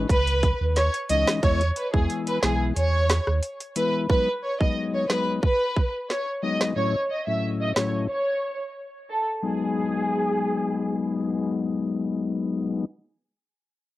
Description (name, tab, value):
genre	dancehall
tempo	90 BPM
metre	4/4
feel	straight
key	G# phrygian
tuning	A4 = 440 Hz
part	mellow tonewheel organ	accompaniment	0.0-12.9 s	A2 to E4	-26 LUFS	left 4 dB	slow rotary speaker, low-pass filter, cassette tape
part	sub bass with octave	bass	0.0-3.4 s	B1 to E2	-24 LUFS	right 1 dB	none
part	dark studio violin section	melody	0.1-11.4 s	G#4 to E5	-26 LUFS	equal	low-pass filter, tape echo
part	island pop drum kit	drums	0.1-7.9 s	hi-hat, kick drum, rim click, snare drum	-24 LUFS	right 1 dB	overdrive, cassette tape
room	light reverb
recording	home recording on cassette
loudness	-22 LUFS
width	side -16 dB against mid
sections	0.0-4.1 A section; 4.1-9.4 B section; 9.4-12.1 C section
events	kick muted 2.8-4.1; filter sweep 4.1-9.4; break 8.1-9.4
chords	0.0 C#madd9; 1.4 E; 4.1 G#m7; 6.8 F#m7/A; 9.4 G#m7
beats	0.10 0.76 | 1.43 2.10 2.76 3.43 | 4.10 4.76 5.43 6.10 | 6.76 7.43 8.10 8.76 | 9.43 10.10 10.76 11.43